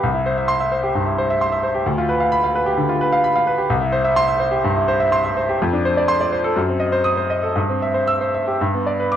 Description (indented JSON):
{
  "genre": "classical, virtuoso piano study",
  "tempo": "115-134 BPM",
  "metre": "4/4",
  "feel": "rubato",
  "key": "C major",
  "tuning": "A4 = 440 Hz",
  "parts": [
    { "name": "clear grand piano", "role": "solo", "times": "0.0-9.2 s", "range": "C2 to E6", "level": "-16 LUFS", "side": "equal", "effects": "none" }
  ],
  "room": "light reverb",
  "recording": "dark, warm production",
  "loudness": "-16 LUFS",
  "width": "side -10 dB against mid",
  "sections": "0.0-9.2 A section",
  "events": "none",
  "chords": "0.0 C; 1.9 G7/D; 3.7 C; 5.6 F6; 6.6 F#dim7; 7.6 C/G; 8.6 G"
}